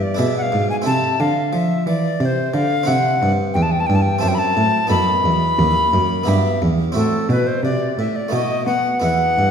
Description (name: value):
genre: classical, baroque-style sonata movement with continuo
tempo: 88 BPM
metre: 3/4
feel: straight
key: unclear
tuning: A4 = 439 Hz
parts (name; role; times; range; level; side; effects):
- alto recorder; melody; 0.0-9.5 s; A4 to B5; -19 LUFS; left 2 dB; none
- harpsichord; accompaniment; 0.0-9.5 s; D#2 to C5; -22 LUFS; right 1 dB; none
- warm cello; bass; 0.0-9.5 s; D#2 to B3; -20 LUFS; right 2 dB; none
room: wet recital hall reverb, RT60 1.4 s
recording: none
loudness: -16 LUFS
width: side -7 dB against mid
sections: 0.0-9.5 A section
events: none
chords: 0.2 E7/B; 0.9 Am/C; 2.9 C; 4.2 F#m7b5; 4.9 B7; 6.3 Em/G; 7.0 F#m7b5/A; 8.3 B7